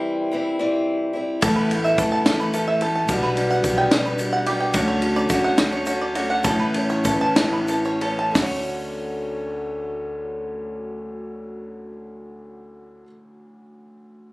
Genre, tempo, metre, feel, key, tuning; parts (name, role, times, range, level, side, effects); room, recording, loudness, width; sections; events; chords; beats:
indie folk with a building arrangement; 58-72 BPM (dotted quarters); 6/8; straight; D major; A4 = 439 Hz
picked old ladder-braced acoustic guitar; accompaniment; 0.0-13.2 s; A2 to F#4; -26 LUFS; left 1 dB
warm upright piano; accompaniment; 1.4-14.3 s; A1 to E5; -27 LUFS; equal
bluegrass banjo; arpeggios; 1.4-13.1 s; F#4 to A5; -24 LUFS; right 2 dB
upright bass; bass; 1.4-13.0 s; A1 to D2; -30 LUFS; equal
compact cocktail drum kit; drums; 1.4-8.5 s; hi-hat, kick drum, ride cymbal, snare drum; -24 LUFS; equal
tube shaker; percussion; 1.4-8.7 s; -38 LUFS; equal
moderate studio reverb, RT60 0.8 s; recorded on a phone in the room, club reverb; -19 LUFS; side -21 dB against mid
0.0-8.4 A section; 8.4-12.5 B section
upright piano fill 3.9-4.7; slowing down 4.7-8.4
0.0 C; 1.4 Asus2; 3.1 Gmaj7/B; 4.7 Dmaj7; 6.5 Aadd9; 8.4 Dmaj7
0.59 | 1.42 2.25 | 3.08 3.92 | 4.75 5.58 | 6.45 7.37 | 8.36 9.39 | 10.43 11.46